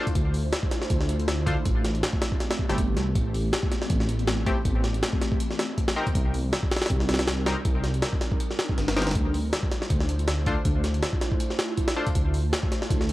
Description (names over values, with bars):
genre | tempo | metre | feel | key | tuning
drum and bass, jungle | 160 BPM | 4/4 | swing 55% on 16ths | D dorian | A4 = 441 Hz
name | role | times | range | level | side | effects
band-passed chord stab | stabs | 0.0-12.1 s | A3 to C5 | -33 LUFS | left 2 dB | chorus, dub echo
jungle sampler-style drum kit | drums | 0.1-13.1 s | hi-hat, kick drum, snare drum | -25 LUFS | equal | none
dark detuned saw bass | bass | 0.2-13.1 s | G1 to D2 | -26 LUFS | equal | tube saturation
room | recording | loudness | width
digital ambience | dry, gritty hardware recording, vinyl crackle | -23 LUFS | side -17 dB against mid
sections
0.0-13.1 A section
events
none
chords
0.0 Dm7; 1.7 Am7; 5.4 Cm7; 9.2 Dm7